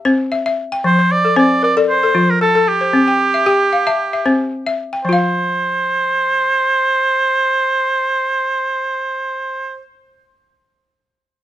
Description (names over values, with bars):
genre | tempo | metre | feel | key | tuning
west african traditional | 114 BPM | 4/4 | swing 54% on 16ths | F major | A4 = 444 Hz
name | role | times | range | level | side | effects
balafon | arpeggios | 0.0-9.9 s | F3 to A5 | -15 LUFS | left 2 dB | none
clear oboe | melody | 0.9-9.8 s | G4 to D5 | -15 LUFS | right 2 dB | plate reverb
room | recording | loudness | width
light reverb | none | -13 LUFS | side -12 dB against mid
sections
0.0-5.0 A section; 5.0-9.3 B section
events
none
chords
0.0 C; 0.8 F; 2.9 C; 5.0 F5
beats
0.31 | 0.84 1.36 1.89 2.41 | 2.94 3.46 3.99 4.52 | 5.05 5.57 6.10 6.63 | 7.16 7.69 8.22 8.74